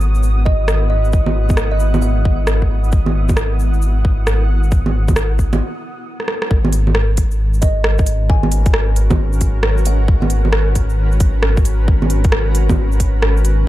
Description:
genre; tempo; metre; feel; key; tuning
future garage; 134 BPM; 4/4; swing 64% on 16ths; G# minor; A4 = 440 Hz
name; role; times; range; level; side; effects
granular cloud pad; sustained chords; 0.0-13.7 s; B3 to F#5; -27 LUFS; equal; built-in reverb, sidechain pumping
dark detuned saw bass; bass; 0.0-13.7 s; G#1; -15 LUFS; equal; sidechain pumping
organic electronic drum kit; drums; 0.0-13.6 s; bongos, hi-hat, rim click, shaker; -20 LUFS; right 2 dB; overdrive
flickering grainy texture; texture; 0.0-5.6 s; D#6; -34 LUFS; right 2 dB; built-in reverb
kalimba; melody; 0.5-2.7, 7.6-10.2 s; D#5 to G#5; -27 LUFS; right 1 dB; vintage 12-bit sampler grit, digital delay
electronic kick drum; drums; 0.5-13.1 s; none; -15 LUFS; equal; overdrive
room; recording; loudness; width
little or no reverb; dark, warm production; -13 LUFS; side -15 dB against mid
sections
0.0-6.5 A section; 6.5-13.7 B section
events
break 5.6-6.5; drum fill 6.2-6.5; band accent 6.4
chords
0.0 Esus2/G#; 6.5 G#m11

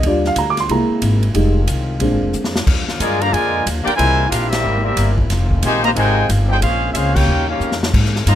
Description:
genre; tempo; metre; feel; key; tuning
jazz, big band swing; 182 BPM; 4/4; swing 63% on 8ths; Eb major; A4 = 440 Hz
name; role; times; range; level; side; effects
dark baby grand piano; accompaniment; 0.0-2.5 s; G3 to D6; -18 LUFS; right 2 dB; none
bright trombone section; sustained chords; 0.0-8.4 s; C3 to Ab4; -28 LUFS; left 2 dB; none
upright bass; bass; 0.0-8.4 s; F1 to Ab2; -18 LUFS; equal; none
swinging big-band drum kit; drums; 0.0-8.4 s; crash cymbal, hi-hat, kick drum, ride cymbal, snare drum; -22 LUFS; equal; none
warm trumpet section; melody; 3.0-8.4 s; C4 to Bb5; -18 LUFS; left 1 dB; none
bright trombone section; second line; 3.0-8.4 s; Bb2 to G4; -23 LUFS; left 1 dB; none
room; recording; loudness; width
little or no reverb; close, detailed microphones; -14 LUFS; side -11 dB against mid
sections
0.0-2.7 A section; 2.7-8.4 B section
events
grand piano solo 0.0-2.7; drum fill 2.3-2.7, 7.6-7.9; band accent 4.5, 7.1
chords
0.0 Ebmaj9; 0.7 Caug7; 1.4 Fm7; 2.0 Bb7; 2.7 Ebmaj9; 4.0 C7b13; 5.3 Fm9; 6.6 Bbm9; 7.3 Eb9

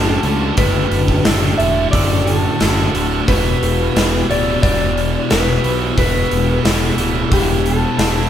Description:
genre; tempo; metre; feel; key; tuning
classic rock; 89 BPM; 4/4; straight; unclear; A4 = 440 Hz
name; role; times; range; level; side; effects
electric slide guitar; melody; 0.0-8.3 s; G4 to E5; -21 LUFS; left 2 dB; none
bright tonewheel organ; sustained chords; 0.0-8.3 s; G3 to F#5; -27 LUFS; right 1 dB; none
crunchy overdriven guitar; riff; 0.0-8.3 s; D2 to E3; -22 LUFS; left 4 dB; harmonic tremolo
distorted electric guitar; riff; 0.0-8.3 s; D2 to E3; -20 LUFS; right 5 dB; overdrive
fuzz fingered electric bass; bass; 0.0-8.2 s; D1 to C#2; -19 LUFS; equal; overdrive
gated 80s drum kit; drums; 0.2-8.2 s; hi-hat, kick drum, snare drum; -19 LUFS; equal; none
room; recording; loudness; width
wet stone room reverb, RT60 1.2 s; band playing live in one room; -13 LUFS; side -10 dB against mid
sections
0.0-8.3 A section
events
none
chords
0.0 D; 3.3 Emadd9

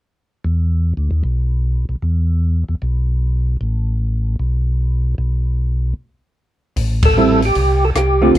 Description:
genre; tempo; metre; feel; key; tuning
soul jazz organ trio; 152 BPM; 4/4; swing 66% on 8ths; unclear; A4 = 442 Hz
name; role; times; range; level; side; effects
mellow tonewheel organ; bass; 0.4-8.4 s; A1 to E2; -16 LUFS; equal; slow rotary speaker
compact cocktail drum kit; drums; 6.8-8.4 s; hi-hat, kick drum, ride cymbal, rim click; -20 LUFS; equal; none
percussive tonewheel organ; melody; 7.1-8.3 s; G4 to A4; -16 LUFS; equal; slow rotary speaker, chorus vibrato
vintage hollow-body jazz guitar; accompaniment; 7.2-8.4 s; D3 to F4; -13 LUFS; right 3 dB; none
room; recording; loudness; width
light reverb; dark, warm production; -15 LUFS; side -13 dB against mid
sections
0.4-6.8 A section; 6.8-8.4 B section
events
break 6.0-6.8; band accent 7.0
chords
0.4 Esus4; 5.2 N.C.; 6.8 Am7

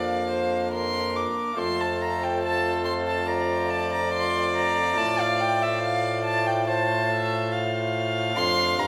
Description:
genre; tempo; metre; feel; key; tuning
classical, baroque-style sonata movement with continuo; 71 BPM; 4/4; straight; F major; A4 = 444 Hz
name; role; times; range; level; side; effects
warm violin; melody; 0.0-8.9 s; A4 to F5; -31 LUFS; equal; none
warm violin; second line; 0.0-8.9 s; E5 to D6; -29 LUFS; equal; none
pipe organ, cornet; accompaniment; 0.0-8.9 s; F2 to D5; -32 LUFS; equal; none
warm bassoon; bass; 0.0-8.9 s; F2 to A2; -31 LUFS; equal; none
room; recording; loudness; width
moderate recital hall reverb, RT60 1.4 s; none; -25 LUFS; mono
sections
0.0-8.9 A section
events
none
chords
0.0 Bb/F; 1.6 F; 5.0 F/A; 8.4 Dm/F

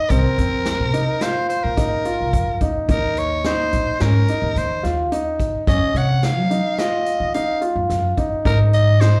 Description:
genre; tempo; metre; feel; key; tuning
progressive instrumental, band music in an uneven meter; 108 BPM; 5/4; straight; Eb dorian; A4 = 440 Hz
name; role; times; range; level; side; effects
raspy soprano saxophone; melody; 0.0-9.2 s; Bb4 to Gb5; -26 LUFS; equal; plate reverb, slapback echo
clear baby grand piano; arpeggios; 0.0-9.2 s; C4 to Db5; -24 LUFS; equal; plate reverb, slapback echo
upright bass; bass; 0.1-9.1 s; Bb1 to Gb3; -22 LUFS; equal; none
swinging big-band drum kit; drums; 0.1-9.1 s; hi-hat, kick drum, snare drum; -28 LUFS; equal; none
room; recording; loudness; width
light reverb; live gig heard through the venue's PA, club reverb; -19 LUFS; mono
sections
0.0-9.2 A section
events
none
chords
0.1 Cm7; 2.9 Eb5; 5.7 Gb5; 8.5 Ebsus4

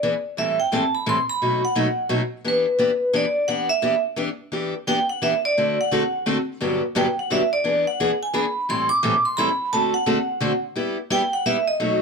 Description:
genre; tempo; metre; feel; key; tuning
jazz; 173 BPM; 3/4; swing 61% on 8ths; E minor; A4 = 440 Hz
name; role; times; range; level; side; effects
vibraphone with hard mallets; melody; 0.0-12.0 s; B4 to D6; -21 LUFS; right 1 dB; none
picked steel-string acoustic guitar; accompaniment; 0.0-12.0 s; G2 to A4; -23 LUFS; left 1 dB; none
room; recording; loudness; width
light reverb; close, detailed microphones; -19 LUFS; side -5 dB against mid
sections
0.0-4.5 A section; 4.5-12.0 B section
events
none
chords
0.4 Am7; 1.4 B7; 2.4 Em7; 5.6 D7; 6.6 Gmaj7; 7.6 E7; 8.7 Am7; 9.7 D7; 10.8 G6

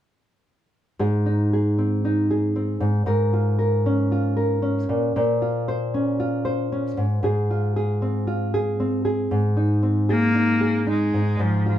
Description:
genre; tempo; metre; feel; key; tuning
pop; 115 BPM; 4/4; swing 60% on 16ths; Ab major; A4 = 440 Hz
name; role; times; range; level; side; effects
nylon-string guitar; accompaniment; 1.0-11.8 s; Ab2 to C5; -20 LUFS; equal; none
dark cello; melody; 10.1-11.8 s; F3 to Bb3; -21 LUFS; left 2 dB; none
room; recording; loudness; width
wet studio ambience, RT60 0.5 s; heard from further back in the room; -20 LUFS; side -11 dB against mid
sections
1.0-9.3 A section; 9.3-11.8 B section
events
none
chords
1.0 Ab; 2.8 Db6/Ab; 4.9 Bbmadd9; 7.0 Fm/Ab; 9.3 Ab; 11.1 Db/Ab (rootless)

